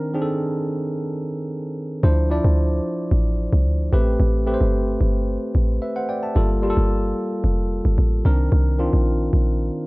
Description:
amapiano; 111 BPM; 4/4; straight; A4 = 440 Hz
tine electric piano; accompaniment; 0.0-9.9 s; Eb3 to A5; -23 LUFS; equal
deep log drum bass; bass; 2.0-9.7 s; F1 to D2; -18 LUFS; equal
digital ambience; dry, gritty hardware recording, cassette tape; -18 LUFS; side -23 dB against mid
0.0-9.9 A section
0.0 Cm9; 2.0 Dm9; 3.9 Am9; 6.4 Gm9; 8.3 Cm9
0.41 0.95 1.49 | 2.04 2.58 3.12 3.66 | 4.20 4.74 5.28 5.82 | 6.36 6.90 7.44 7.98 | 8.52 9.06 9.60

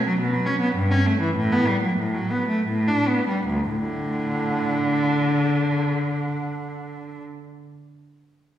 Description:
classical, baroque-style suite movement for unaccompanied cello; 72-108 BPM; 3/4; rubato; D major; A4 = 439 Hz
rich cello; solo; 0.0-7.2 s; D2 to D4; -21 LUFS; equal
wet recital hall reverb, RT60 1.5 s; recorded in a church or concert hall; -20 LUFS; side -11 dB against mid
0.0-3.5 A section; 3.5-8.0 B section
slowing down 0.0-3.5
0.0 B5; 0.8 Em/G; 1.3 Gmaj9/A; 2.7 A9sus4; 3.5 D5
0.19 0.76 | 1.35 1.97 2.67 | 3.47 4.23 5.00 | 5.76 6.50

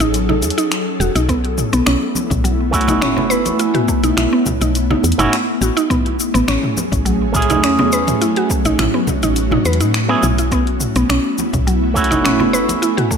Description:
organic downtempo; 104 BPM; 4/4; straight; B mixolydian; A4 = 440 Hz
ethereal airy pad; sustained chords; 0.0-13.2 s; F#3 to A4; -20 LUFS; equal; ensemble chorus, built-in reverb, sidechain pumping
mallet-like synth pluck; arpeggios; 0.0-13.2 s; F#3 to B4; -19 LUFS; equal; chorus, ping-pong delay
woody FM bass; bass; 0.0-12.7 s; E1 to A2; -20 LUFS; equal; sidechain pumping
deep house drum kit; drums; 0.0-13.2 s; finger snaps, hi-hat, shaker, toms; -23 LUFS; left 1 dB; studio reverb
congas and bongos; percussion; 0.3-12.8 s; -27 LUFS; right 3 dB
electronic kick drum; drums; 1.3-13.2 s; -21 LUFS; equal; studio reverb
electric guitar with an envelope filter; accompaniment; 2.7-13.2 s; A3 to G#4; -21 LUFS; right 3 dB; sidechain pumping, ping-pong delay
light reverb; -13 LUFS; side -6 dB against mid
0.0-13.2 A section
0.0 F#m9/A; 1.3 B9sus4; 5.9 F#m9/A; 10.5 B9sus4
0.14 0.71 | 1.29 1.87 2.44 3.02 | 3.60 4.17 4.75 5.33 | 5.91 6.48 7.06 7.64 | 8.21 8.79 9.37 9.94 | 10.52 11.10 11.67 12.25 | 12.83

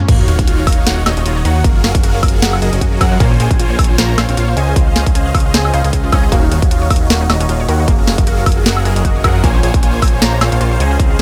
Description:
future bass; 154 BPM; 4/4; swing 56% on 16ths, half-time; A4 = 440 Hz
unison pluck; arpeggios; 0.0-11.2 s; Bb3 to F5; -28 LUFS; equal; sidechain pumping, tape echo
trap drum kit; drums; 0.0-11.2 s; crash cymbal, hi-hat, snare drum, toms, woodblock; -19 LUFS; equal
airy dreamy lead; arpeggios; 0.1-11.2 s; Eb5 to Bb5; -28 LUFS; equal; chorus, sidechain pumping, tape echo
supersaw chords; riff; 0.1-11.2 s; Eb3 to Bb5; -22 LUFS; equal; phaser, sidechain pumping, tape echo
fat analog bass; bass; 0.1-11.2 s; Eb1 to Gb2; -18 LUFS; equal; sidechain pumping
electronic kick drum; drums; 0.1-11.1 s; -16 LUFS; equal
sub drop; sound effects; 0.1-1.6 s; -23 LUFS; equal
digital ambience; -13 LUFS; mono
0.1-11.2 A section
drop 0.1-11.2; impact 0.1-1.6
0.1 Ebm9; 1.6 Gbmaj9; 3.2 Bbm9; 4.6 Dbmaj7; 6.3 Ebm9; 7.9 Gbmaj9; 9.4 Bbm9
| 0.09 0.48 0.86 1.25 | 1.65 2.03 2.42 2.81 | 3.20 3.59 3.98 4.37 | 4.76 5.15 5.54 5.93 | 6.32 6.71 7.10 7.49 | 7.88 8.27 8.66 9.05 | 9.44 9.83 10.22 10.61 | 10.99

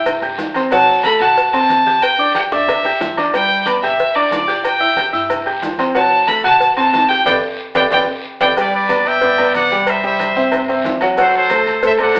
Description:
latin, salsa; 184 BPM; 4/4; straight; G major; A4 = 440 Hz
bright fiddle; melody; 0.0-8.5 s; D5 to B5; -14 LUFS; equal
clear baby grand piano; accompaniment; 0.0-12.2 s; F#3 to G6; -16 LUFS; equal
upright bass; bass; 0.0-12.2 s; G1 to G2; -39 LUFS; equal
agogo bells and timbales; percussion; 0.1-12.2 s; -23 LUFS; equal
congas; percussion; 0.1-12.2 s; -34 LUFS; equal
cowbell and bongos; percussion; 0.1-12.2 s; -24 LUFS; left 1 dB
guiro; percussion; 0.1-12.2 s; -32 LUFS; equal
maracas; percussion; 0.1-12.2 s; -42 LUFS; left 1 dB
bright trumpet section; melody; 8.6-12.2 s; A4 to G5; -15 LUFS; equal
moderate large studio reverb, RT60 1.1 s; band playing live in one room, telephone sound; -12 LUFS; side -26 dB against mid
0.0-8.6 A section; 8.6-12.2 B section
drum fill 2.5-3.3, 7.3-8.6; band accent 7.3-8.6
0.0 C; 0.7 D7; 2.0 G; 4.6 C; 6.0 D7; 7.3 G; 9.9 C; 11.2 D7
0.06 0.39 | 0.71 1.04 1.37 1.70 | 2.03 2.35 2.68 3.01 | 3.34 3.66 3.99 4.32 | 4.65 4.97 5.30 5.63 | 5.95 6.28 6.61 6.93 | 7.26 7.59 7.92 8.24 | 8.57 8.89 9.22 9.54 | 9.87 10.20 10.52 10.85 | 11.17 11.50 11.82 12.15

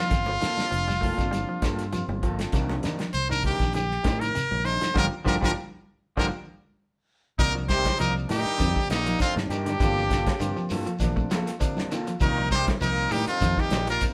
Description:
afrobeat; 99 BPM; 4/4; swing 54% on 16ths; C dorian; A4 = 445 Hz
brilliant trumpet; melody; 0.0-14.0 s; Eb4 to C5; -29 LUFS; equal
barky tine electric piano; accompaniment; 0.0-14.1 s; C3 to D5; -39 LUFS; equal
semi-hollow electric guitar; arpeggios; 0.0-14.0 s; C3 to A3; -35 LUFS; equal
electric guitar through a small old amp; stabs; 0.1-14.1 s; G3 to Bb4; -38 LUFS; equal
fingered electric bass; bass; 0.1-14.0 s; F1 to A2; -33 LUFS; equal
cloth-damped thuddy drum kit; drums; 0.1-14.1 s; hi-hat, kick drum, snare drum; -31 LUFS; equal
congas; percussion; 0.1-13.9 s; -38 LUFS; equal
shekere; percussion; 0.1-14.1 s; -41 LUFS; equal
brilliant trombone section; second line; 7.4-14.0 s; Eb2 to C3; -40 LUFS; equal
clear trumpet; second line; 7.4-14.0 s; Bb3 to G4; -38 LUFS; equal
moderate studio reverb, RT60 0.7 s; band playing live in one room; -26 LUFS; mono
0.0-7.4 A section; 7.4-14.1 B section
band accent 5.0-7.4; drum fill 6.8-7.4
0.1 Gm11; 2.5 Cm9; 5.0 Gm7; 7.4 Cm9; 9.8 Gm11; 12.2 Cm9
| 0.12 0.73 1.33 1.94 | 2.54 3.15 3.75 4.36 | 4.97 5.57 6.18 6.78 | 7.39 7.99 8.60 9.20 | 9.80 10.40 11.01 11.61 | 12.21 12.82 13.42 14.02

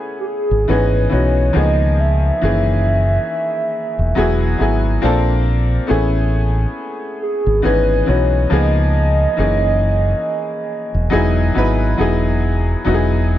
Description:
lo-fi hip hop; 69 BPM; 4/4; swing 57% on 16ths; E major; A4 = 439 Hz
bright upright piano; accompaniment; 0.0-13.4 s; D#3 to B4; -19 LUFS; left 1 dB; low-pass filter
warbly nostalgic lead; melody; 0.2-12.0 s; G4 to E5; -20 LUFS; right 1 dB; chorus, low-pass filter, analog delay
deep dub fingered electric bass; bass; 0.5-13.4 s; E1 to C#2; -16 LUFS; equal
light reverb; -14 LUFS; side -13 dB against mid
0.0-12.9 A section
0.0 Amaj9; 0.7 C#m7/G#; 1.6 C#13; 2.4 F#13; 4.2 Eadd9; 5.0 A#maj9; 5.9 Amaj9; 7.6 C#m7/G#; 8.5 C#13; 9.4 F#13; 11.1 Emaj9
0.68 1.55 | 2.42 3.29 4.16 5.03 | 5.90 6.77 7.64 8.51 | 9.38 10.25 11.12 11.99 | 12.86

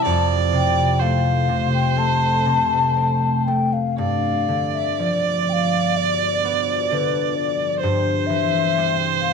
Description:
celtic folk, Celtic slow air; 58-66 BPM; 4/4; rubato; G mixolydian; A4 = 441 Hz
mellow hollow wooden flute; melody; 0.0-9.3 s; B4 to A5; -22 LUFS; left 7 dB
rich viola; second line; 0.0-9.3 s; C5 to D5; -23 LUFS; right 14 dB
concert harp; accompaniment; 0.0-9.3 s; F2 to E4; -22 LUFS; equal
deep dark ambient pad; sustained chords; 0.0-9.3 s; F2 to A3; -29 LUFS; right 3 dB; chorus, built-in reverb
moderate echo chamber reverb, RT60 1.7 s, small room ambience; 1960s-style stereo with parts hard left and right; -17 LUFS; side -5 dB against mid
0.0-4.0 A section; 4.0-9.3 B section
0.1 F; 4.0 G7; 7.8 Cmaj7/G
| 0.05 1.00 1.96 2.96 | 3.99 5.00 5.98 6.91 | 7.83 8.76

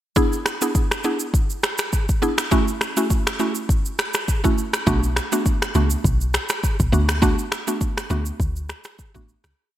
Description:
afrobeats; 102 BPM; 4/4; swing 55% on 16ths; E mixolydian; A4 = 439 Hz
mallet-like synth pluck; accompaniment; 0.2-9.3 s; A3 to G#4; -23 LUFS; right 1 dB; chorus
afro-pop drum kit; drums; 0.2-9.6 s; finger snaps, kick drum, rim click, shaker; -21 LUFS; equal; gated reverb
deep log drum bass; bass; 4.9-9.5 s; A1 to D2; -21 LUFS; equal
light reverb, digital ambience; bright 1980s-style digital production; -19 LUFS; side -12 dB against mid
0.2-9.6 verse
fade-out 7.2-9.6
0.2 E7; 2.5 F#m7; 4.9 Bm7; 6.9 D6
| 0.16 0.75 1.34 1.93 | 2.52 3.10 3.69 4.28 | 4.87 5.46 6.04 6.63 | 7.22 7.81 8.40 8.99

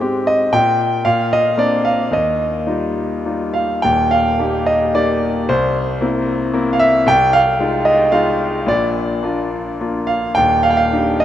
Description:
classical, lyrical solo piano; 101-118 BPM; 3/4; rubato; Eb major; A4 = 438 Hz
clear concert grand piano; solo; 0.0-11.2 s; Eb1 to G5; -14 LUFS; equal
moderate lush hall reverb, RT60 2.6 s; rough home demo mix, cassette tape; -14 LUFS; side -11 dB against mid
0.0-3.8 A section; 3.8-11.2 A section
0.0 Abmaj7; 0.5 N.C.; 1.1 Bbadd9; 2.1 Ebadd9; 3.8 Eb; 5.5 C7; 7.1 Fm7/C; 8.7 Bb; 10.4 Ebmaj7
0.01 | 0.53 1.06 1.57 | 2.11 2.68 3.26 | 3.84 4.40 4.95 | 5.49 6.02 6.54 | 7.08 7.60 8.13 | 8.68 9.23 9.80 | 10.37 10.94

